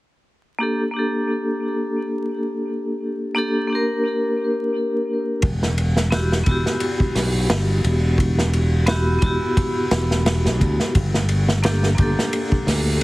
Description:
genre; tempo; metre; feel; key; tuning
trip hop; 87 BPM; 4/4; swing 55% on 16ths; unclear; A4 = 440 Hz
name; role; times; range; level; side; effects
vibraphone with hard mallets; accompaniment; 0.6-13.0 s; Bb3 to Bb4; -22 LUFS; equal; tremolo, low-pass filter, tape echo
modern bright fingered electric bass; bass; 5.4-13.0 s; E1 to D2; -20 LUFS; equal; none
vintage drum kit; drums; 5.4-13.0 s; hi-hat, kick drum, ride cymbal, snare drum; -21 LUFS; equal; none
room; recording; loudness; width
light reverb, small room reverb; heavily compressed radio sound, multiband compression, vinyl crackle; -18 LUFS; side -19 dB against mid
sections
0.0-10.9 A section; 10.9-13.0 B section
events
none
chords
0.0 Gmadd9; 5.4 Emadd9; 10.9 Gmadd9

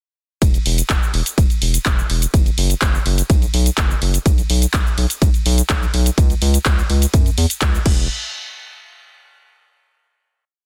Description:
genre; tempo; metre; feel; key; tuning
progressive house; 125 BPM; 4/4; straight; unclear; A4 = 441 Hz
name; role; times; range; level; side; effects
round analog bass; bass; 0.4-8.1 s; E1 to F#2; -20 LUFS; equal; sidechain pumping
electronic kick drum; drums; 0.4-8.0 s; none; -18 LUFS; equal; none
house drum kit; drums; 0.4-8.0 s; crash cymbal, handclaps, hi-hat, ride cymbal, shaker; -24 LUFS; equal; sidechain pumping on hats, sidechain pumping on cymbals, sidechain pumping on perc
room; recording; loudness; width
little or no reverb; dense, heavily limited modern master; -17 LUFS; mono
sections
0.4-8.1 drop; 8.1-10.0 final hit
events
drop 0.4-8.1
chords
none

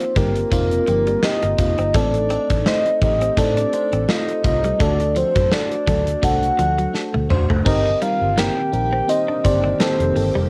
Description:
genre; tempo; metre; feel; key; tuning
1980s-style pop; 84 BPM; 4/4; swing 55% on 16ths; unclear; A4 = 440 Hz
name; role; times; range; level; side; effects
soft octave-layered synth lead; melody; 0.0-10.4 s; Bb4 to G5; -23 LUFS; equal; chorus, phaser, plate reverb
FM electric piano with soft pad layer; accompaniment; 0.0-10.5 s; A3 to C5; -26 LUFS; equal; chorus, cassette tape, plate reverb
gated 80s drum kit; drums; 0.0-10.3 s; crash cymbal, hi-hat, kick drum, snare drum, toms; -24 LUFS; equal; cassette tape
direct-recorded clean electric guitar; riff; 0.2-10.5 s; F3 to D4; -30 LUFS; equal; subtle chorus, cassette tape
vintage muted fingered electric bass; bass; 0.2-10.5 s; Eb1 to A2; -25 LUFS; equal; none
string machine, cellos; sustained chords; 7.7-10.5 s; Eb3 to G4; -31 LUFS; equal; ensemble chorus, cassette tape
room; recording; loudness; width
moderate studio reverb, RT60 0.5 s; home recording on cassette; -19 LUFS; mono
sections
0.0-7.7 A section; 7.7-10.5 B section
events
drum fill 6.9-7.7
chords
0.0 Cm7; 1.9 Adim; 4.8 D; 7.7 Cm7

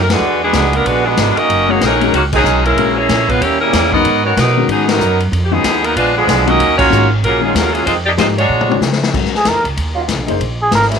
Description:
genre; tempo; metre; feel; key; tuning
jazz, big band swing; 189 BPM; 4/4; swing 61% on 8ths; Eb minor; A4 = 440 Hz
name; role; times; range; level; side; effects
bright saxophone section; melody; 0.0-8.8 s; Eb3 to Eb5; -14 LUFS; left 2 dB; none
clear trombone section; second line; 0.0-8.8 s; Bb2 to Bb4; -19 LUFS; right 14 dB; slapback echo
upright bass; bass; 0.0-11.0 s; Gb1 to C#3; -18 LUFS; right 1 dB; none
swinging big-band drum kit; drums; 0.1-11.0 s; crash cymbal, hi-hat, kick drum, ride cymbal, snare drum, toms; -19 LUFS; left 4 dB; none
warm baby grand piano; accompaniment; 1.7-10.4 s; Eb3 to C#5; -20 LUFS; left 14 dB; none
trumpet with plunger mute; melody; 9.4-10.9 s; Ab4 to Bb4; -15 LUFS; right 1 dB; none
muted trombone section; sustained chords; 9.9-11.0 s; Db3 to F4; -23 LUFS; right 4 dB; none
room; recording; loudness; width
light reverb, studio reverb; 1960s-style stereo with parts hard left and right; -11 LUFS; side -6 dB against mid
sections
0.0-9.1 A section; 9.1-11.0 B section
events
band accent 0.1, 2.3, 4.8, 6.7; drum fill 8.5-9.1; muted trumpet solo 9.1-11.0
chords
0.2 E9; 1.5 Gb6; 2.8 Bbm7b5; 3.4 Eb7b9; 4.0 Abm11; 5.3 Fm7b5; 6.0 Bb7b9; 6.6 Ebm11; 7.9 Fm7; 8.5 Bb7alt; 9.1 Ebm9; 10.4 Bbm7

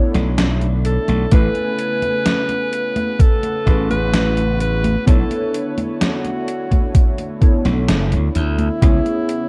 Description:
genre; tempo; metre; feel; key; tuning
vaporwave; 64 BPM; 4/4; straight; B dorian; A4 = 440 Hz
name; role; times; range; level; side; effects
warbly lo-fi synth keys; accompaniment; 0.0-9.5 s; A3 to C#5; -26 LUFS; equal; analog chorus, vintage 12-bit sampler grit, tape echo
lush unison pad; sustained chords; 0.0-9.5 s; C#3 to G#5; -33 LUFS; equal; chorus
glassy slap bass; bass; 0.1-9.0 s; F#1 to D2; -20 LUFS; equal; tube saturation
gated 80s digital drum machine; drums; 0.1-9.5 s; congas, hi-hat, snare drum; -25 LUFS; equal; gated reverb, gated reverb snare, overdrive
warm alto saxophone; melody; 0.9-9.5 s; E4 to B4; -25 LUFS; equal; tape echo
electronic kick drum; drums; 1.3-9.0 s; none; -15 LUFS; equal; overdrive
room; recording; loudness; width
little or no reverb; dark, warm production, cassette tape; -17 LUFS; mono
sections
0.0-9.5 A section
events
none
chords
0.0 Bm11; 1.3 Amaj9; 5.1 Bm11; 8.8 C#m7

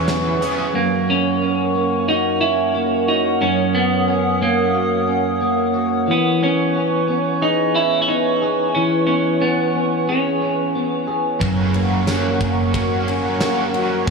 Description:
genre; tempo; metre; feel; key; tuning
dream pop; 90 BPM; 4/4; straight; F# mixolydian; A4 = 442 Hz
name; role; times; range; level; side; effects
overdriven semi-hollow guitar; accompaniment; 0.0-0.8, 11.4-14.1 s; F#2 to G#4; -25 LUFS; right 2 dB; tremolo, ensemble chorus
warbly tape-like pad; sustained chords; 0.0-14.1 s; A#4 to D#6; -22 LUFS; right 2 dB; chorus, built-in reverb
electric guitar at the edge of break-up; arpeggios; 0.0-14.1 s; F#2 to G#4; -21 LUFS; left 1 dB; lush chorus, tape echo
vintage muted picked electric bass; bass; 0.0-0.7, 11.4-14.1 s; E1 to F#1; -24 LUFS; left 1 dB; none
huge arena drum kit; drums; 0.1-0.6, 11.4-14.1 s; hi-hat, kick drum, ride cymbal, snare drum, tambourine; -25 LUFS; equal; none
semi-hollow electric guitar; melody; 0.8-11.0 s; A#3 to E4; -20 LUFS; right 2 dB; tape echo
room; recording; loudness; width
light reverb, small room ambience; studio ambience; -16 LUFS; side -4 dB against mid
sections
0.7-14.1 A section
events
none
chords
0.0 E6; 0.7 F#; 6.1 E6; 11.4 F#

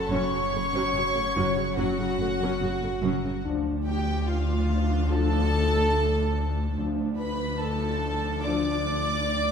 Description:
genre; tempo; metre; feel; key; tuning
cinematic; 72 BPM; 4/4; straight; unclear; A4 = 440 Hz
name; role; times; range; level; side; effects
warm symphonic violin section; melody; 0.0-9.5 s; F5 to D6; -32 LUFS; equal; none
dark clarinet; second line; 0.0-9.5 s; F4 to D5; -32 LUFS; equal; none
warm symphonic violin section; second line; 0.0-9.5 s; F4 to D5; -34 LUFS; left 1 dB; none
mellow French horn section; sustained chords; 0.0-8.8 s; F3 to D4; -33 LUFS; left 4 dB; none
warm sub bass; drone; 0.0-9.5 s; Gb1 to D2; -32 LUFS; left 2 dB; none
warm symphonic violin section; texture; 0.0-3.0 s; Gb5 to Db6; -43 LUFS; left 2 dB; none
dark symphonic viola section; accompaniment; 0.1-9.5 s; Db3 to D4; -34 LUFS; right 2 dB; none
dark symphonic double bass section; bass; 0.1-9.5 s; Gb1 to D2; -30 LUFS; left 1 dB; none
warm symphonic cello section; bass; 0.1-9.5 s; D2 to Gb2; -33 LUFS; right 4 dB; none
room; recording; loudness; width
wet scoring stage reverb, RT60 2.0 s; heard from further back in the room; -24 LUFS; side -6 dB against mid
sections
0.0-9.5 A section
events
none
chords
0.0 Gb5; 3.4 Dm

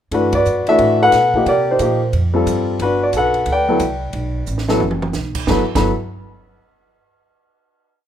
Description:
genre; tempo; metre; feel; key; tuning
jazz piano trio; 179 BPM; 4/4; swing 64% on 8ths; G major; A4 = 435 Hz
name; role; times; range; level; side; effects
warm baby grand piano; melody; 0.1-5.9 s; E3 to B5; -15 LUFS; left 1 dB; none
upright bass; bass; 0.1-5.9 s; F#1 to C3; -22 LUFS; right 1 dB; none
compact cocktail drum kit; drums; 0.1-5.8 s; crash cymbal, hi-hat, kick drum, ride cymbal, snare drum, toms; -26 LUFS; right 3 dB; none
room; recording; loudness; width
light reverb; minimal, uncompressed stereo recording; -14 LUFS; side -10 dB against mid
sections
0.1-5.5 A section; 5.5-6.8 final chord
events
band accent 0.3; drum fill 4.5-5.1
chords
0.1 Gmaj9; 1.5 Cm7; 2.1 Fadd9; 2.8 Gmaj9; 5.5 Gmaj7

